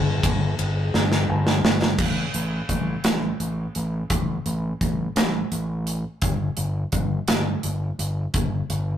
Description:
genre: quiet-loud alternative rock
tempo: 57 BPM (dotted quarters)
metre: 6/8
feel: straight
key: unclear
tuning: A4 = 440 Hz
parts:
  - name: growling fingered electric bass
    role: bass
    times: 0.0-9.0 s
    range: G1 to A1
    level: -25 LUFS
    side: equal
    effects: overdrive
  - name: big rock drum kit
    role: drums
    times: 0.2-8.9 s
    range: crash cymbal, hi-hat, kick drum, ride cymbal, snare drum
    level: -23 LUFS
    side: equal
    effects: none
room: moderate studio reverb, RT60 0.7 s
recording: rough rehearsal-room recording, tube saturation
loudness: -21 LUFS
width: side -10 dB against mid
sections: 0.0-2.0 A section; 2.0-9.0 B section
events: drum fill 0.9-2.0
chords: none

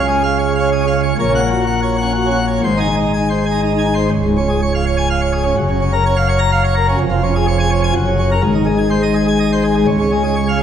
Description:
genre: classical, organ toccata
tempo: 125 BPM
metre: 3/4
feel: straight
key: Db major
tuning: A4 = 440 Hz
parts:
  - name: pipe organ, plenum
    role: solo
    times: 0.0-10.6 s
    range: Db1 to Bb5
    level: -13 LUFS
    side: equal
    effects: none
room: wet recital hall reverb, RT60 1.6 s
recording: none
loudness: -13 LUFS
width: side -9 dB against mid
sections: 0.0-4.1 A section; 4.1-10.6 B section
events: none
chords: 0.0 Db; 1.2 Gb/Bb; 2.6 Ab; 4.1 Db; 5.6 Gbmaj7; 7.0 Db/F; 7.9 Gb; 8.4 Ab; 9.9 Db

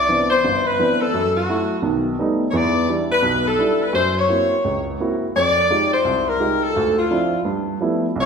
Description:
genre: jazz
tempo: 171 BPM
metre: 4/4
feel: swing 64% on 8ths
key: unclear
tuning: A4 = 440 Hz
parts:
  - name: warm saxophone section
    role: melody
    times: 0.0-8.3 s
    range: F4 to D5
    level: -18 LUFS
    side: left 2 dB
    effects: none
  - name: warm upright piano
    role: accompaniment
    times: 0.0-8.3 s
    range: G1 to G4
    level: -20 LUFS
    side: right 2 dB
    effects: none
room: wet recital hall reverb, RT60 1.4 s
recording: recorded in a church or concert hall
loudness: -17 LUFS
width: side -6 dB against mid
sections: 0.0-8.3 A section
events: none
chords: 0.0 Cmaj9; 1.1 F#m7; 1.8 Baug7; 2.5 Em7; 3.9 F#7#11; 5.3 Fm9; 6.7 Dm9; 7.5 G13

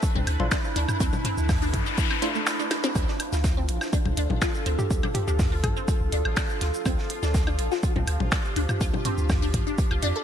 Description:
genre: minimal techno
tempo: 123 BPM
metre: 4/4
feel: straight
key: D dorian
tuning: A4 = 440 Hz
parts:
  - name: electronic kick drum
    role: drums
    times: 0.0-9.9 s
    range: none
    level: -26 LUFS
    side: equal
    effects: overdrive, small room ambience
  - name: minimal click drum kit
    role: drums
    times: 0.0-10.1 s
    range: cabasa, finger snaps, hi-hat, snare drum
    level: -32 LUFS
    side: equal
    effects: overdrive, small room ambience
  - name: modern studio drum kit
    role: drums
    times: 0.0-10.1 s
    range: hi-hat, snare drum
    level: -40 LUFS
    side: right 4 dB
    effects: sidechain pumping on hats, high-pass filter on hats, small room ambience, high-pass filter on snare, high-pass filter on room
  - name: bubbling stepped-filter texture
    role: texture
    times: 0.0-10.2 s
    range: F3 to B4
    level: -37 LUFS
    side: equal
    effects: chorus, built-in reverb, sidechain pumping
  - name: warbly tape-like pad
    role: texture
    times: 0.0-10.2 s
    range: D4 to A4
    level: -33 LUFS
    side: right 2 dB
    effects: chorus, built-in reverb, sidechain pumping
  - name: resonant blip pluck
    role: riff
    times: 0.2-10.2 s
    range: A3 to A4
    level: -32 LUFS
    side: left 2 dB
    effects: phaser, ensemble chorus, sidechain pumping, ping-pong delay
  - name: punchy sub bass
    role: bass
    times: 0.2-10.1 s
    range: A1 to F2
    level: -26 LUFS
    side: equal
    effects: sidechain pumping
  - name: electronic bongos, woodblock and toms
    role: percussion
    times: 0.2-10.0 s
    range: none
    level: -31 LUFS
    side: left 2 dB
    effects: small room ambience, ping-pong delay
  - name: wavetable chord stab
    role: stabs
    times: 0.4-2.3 s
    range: A3 to C5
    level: -36 LUFS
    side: left 2 dB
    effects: ping-pong delay
  - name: noise sweep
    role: sound effects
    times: 1.6-3.0 s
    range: none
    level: -32 LUFS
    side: left 4 dB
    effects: none
  - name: hollow square pluck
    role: melody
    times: 4.8-6.1 s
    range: G4 to A4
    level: -35 LUFS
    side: equal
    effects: chorus, ping-pong delay
room: light reverb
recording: bright 1980s-style digital production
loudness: -22 LUFS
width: side -9 dB against mid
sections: 0.0-10.2 A section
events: noise sweep 1.6-3.0; kick drops out 2.5-3.0; drum fill 2.7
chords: 0.0 Dm7

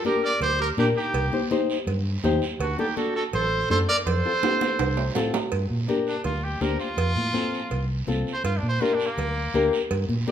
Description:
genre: latin, cumbia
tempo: 164 BPM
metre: 4/4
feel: straight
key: G minor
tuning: A4 = 440 Hz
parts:
  - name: clear trumpet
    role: melody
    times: 0.0-10.3 s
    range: Bb3 to D5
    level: -27 LUFS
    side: right 1 dB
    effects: none
  - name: clear clarinet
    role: second line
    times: 0.0-5.1 s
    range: D4 to Bb4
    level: -31 LUFS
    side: right 7 dB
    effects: none
  - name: congas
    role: percussion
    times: 0.0-10.3 s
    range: none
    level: -33 LUFS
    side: left 3 dB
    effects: none
  - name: nylon-string guitar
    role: accompaniment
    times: 0.1-10.3 s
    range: C4 to C5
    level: -27 LUFS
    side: left 4 dB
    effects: none
  - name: guiro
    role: percussion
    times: 0.1-10.3 s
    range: none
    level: -38 LUFS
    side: right 5 dB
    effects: none
  - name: fingered electric bass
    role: bass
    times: 0.4-10.2 s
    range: A1 to Bb2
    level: -28 LUFS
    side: equal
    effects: none
  - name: cowbell and timbales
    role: percussion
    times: 0.4-10.1 s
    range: none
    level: -31 LUFS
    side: right 8 dB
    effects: none
room: wet large studio reverb, RT60 1.4 s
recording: minimal, uncompressed stereo recording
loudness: -22 LUFS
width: side -9 dB against mid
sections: 0.0-5.5 A section; 5.5-10.3 B section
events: drum fill 4.4-5.5; trumpet solo 5.5-10.3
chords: 0.0 Gm; 1.1 Cm; 2.6 D7; 4.1 F; 5.5 Gm; 7.0 F; 8.4 Gm

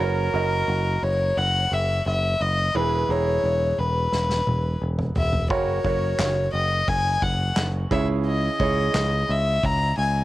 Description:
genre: piano-driven pop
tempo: 87 BPM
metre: 4/4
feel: straight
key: F# mixolydian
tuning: A4 = 439 Hz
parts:
  - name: warm violin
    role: melody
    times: 0.0-10.2 s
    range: A#4 to A#5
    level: -24 LUFS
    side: left 2 dB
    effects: cassette tape
  - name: bright concert grand piano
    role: accompaniment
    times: 0.0-10.2 s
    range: C#3 to A#5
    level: -29 LUFS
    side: right 6 dB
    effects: cassette tape
  - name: picked electric bass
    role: bass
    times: 0.0-10.2 s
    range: E1 to C#2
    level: -24 LUFS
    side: equal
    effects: none
  - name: unplugged drum kit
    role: drums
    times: 4.1-9.8 s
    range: handclaps, kick drum, snare drum, toms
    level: -28 LUFS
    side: equal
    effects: cassette tape
room: light reverb, small room ambience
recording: home recording on cassette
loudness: -20 LUFS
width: side -16 dB against mid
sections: 0.0-10.2 A section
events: drum fill 4.1-5.5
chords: 0.0 F#; 2.7 E; 5.5 F#; 7.9 C#m

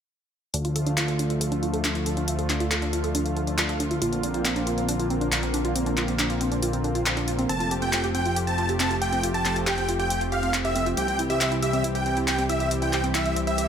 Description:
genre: uplifting trance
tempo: 138 BPM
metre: 4/4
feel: straight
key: D minor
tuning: A4 = 440 Hz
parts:
  - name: lush unison pad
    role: sustained chords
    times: 0.5-13.7 s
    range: D3 to G4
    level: -29 LUFS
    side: equal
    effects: chorus
  - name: analog pluck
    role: arpeggios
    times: 0.5-13.6 s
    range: C4 to A4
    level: -30 LUFS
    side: right 3 dB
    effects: chorus, digital delay
  - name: fat analog bass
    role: bass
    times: 0.5-13.7 s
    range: F1 to D2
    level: -29 LUFS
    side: left 1 dB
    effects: none
  - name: big-room dance drum kit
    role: drums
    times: 0.5-13.7 s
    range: handclaps, hi-hat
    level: -28 LUFS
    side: left 1 dB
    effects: none
  - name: big supersaw lead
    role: melody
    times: 7.5-13.7 s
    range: E5 to A5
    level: -26 LUFS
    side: equal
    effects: ping-pong delay
  - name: reverse cymbal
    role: sound effects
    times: 13.7 s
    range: none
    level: -43 LUFS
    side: right 2 dB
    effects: none
room: moderate lush hall reverb, RT60 1.9 s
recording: none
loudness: -22 LUFS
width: side -8 dB against mid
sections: 0.5-13.7 A section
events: filter sweep on synth pluck 0.5-13.7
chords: 0.5 Dm; 4.0 Bbadd9; 7.5 Fadd9; 11.0 C

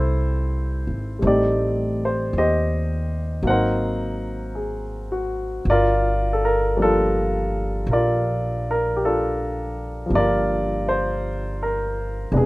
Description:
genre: jazz ballad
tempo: 54 BPM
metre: 4/4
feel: swing 69% on 8ths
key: G minor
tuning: A4 = 441 Hz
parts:
  - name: warm baby grand piano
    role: accompaniment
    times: 0.0-12.5 s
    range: C3 to Gb5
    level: -21 LUFS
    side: equal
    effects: none
  - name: upright bass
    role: bass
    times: 0.0-12.5 s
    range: E1 to Eb2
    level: -24 LUFS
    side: equal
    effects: none
room: moderate studio reverb, RT60 0.6 s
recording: rough home demo mix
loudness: -20 LUFS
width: side -20 dB against mid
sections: 0.0-12.5 A section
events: none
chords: 0.0 Fmaj7 (rootless); 1.2 Am7b5; 3.5 Ab9; 5.7 Gm9

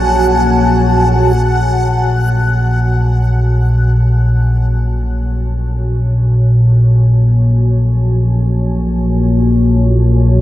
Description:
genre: dark ambient drone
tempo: free time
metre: none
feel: none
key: unclear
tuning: A4 = 442 Hz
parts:
  - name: deep dark ambient pad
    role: sustained chords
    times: 0.0-10.4 s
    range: Gb4 to A5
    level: -19 LUFS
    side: right 1 dB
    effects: chorus, built-in reverb
  - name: analog drone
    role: drone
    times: 0.0-10.4 s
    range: Bb1 to Bb2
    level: -11 LUFS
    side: equal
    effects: wide subtle chorus
  - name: backwards swelling texture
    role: texture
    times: 0.0-1.4 s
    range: Gb5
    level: -23 LUFS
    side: left 2 dB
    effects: built-in reverb
room: moderate huge ambient reverb, RT60 7.5 s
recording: none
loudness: -10 LUFS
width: side -14 dB against mid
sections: 0.0-1.4 A section; 1.4-10.4 B section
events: fade-in on ambient pad 1.4-10.4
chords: 0.0 Gbm

